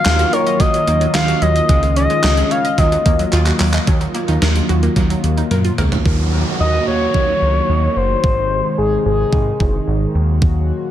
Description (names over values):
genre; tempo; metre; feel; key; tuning
synth-pop; 110 BPM; 4/4; straight; Eb dorian; A4 = 440 Hz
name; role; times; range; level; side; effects
expressive synth lead; melody; 0.0-10.1 s; Ab4 to F5; -19 LUFS; left 2 dB; chorus, dub echo
chorused pulse-width pad; sustained chords; 0.0-10.9 s; C3 to Gb4; -21 LUFS; equal; none
chorused synth bass; bass; 0.1-10.7 s; Gb1 to Eb3; -18 LUFS; equal; none
gated 80s digital drum machine; drums; 0.1-10.5 s; handclaps, hi-hat, kick drum, snare drum, toms; -18 LUFS; equal; gated reverb, gated reverb snare, dub echo
analog pluck; arpeggios; 0.2-6.0 s; Gb3 to Eb5; -25 LUFS; right 2 dB; chorus, dub echo
downlifter; sound effects; 6.1-10.4 s; none; -28 LUFS; right 1 dB; none
room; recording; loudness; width
light reverb, digital ambience; echo-heavy mix; -13 LUFS; side -11 dB against mid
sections
0.0-3.9 A section; 3.9-6.1 B section; 6.1-10.9 C section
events
drum fill 3.3-3.9, 5.5-6.1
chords
0.0 Ebmadd9; 1.7 Dbadd9; 2.8 Ebmadd9; 6.1 Ebm; 8.2 Ab; 10.1 Ebm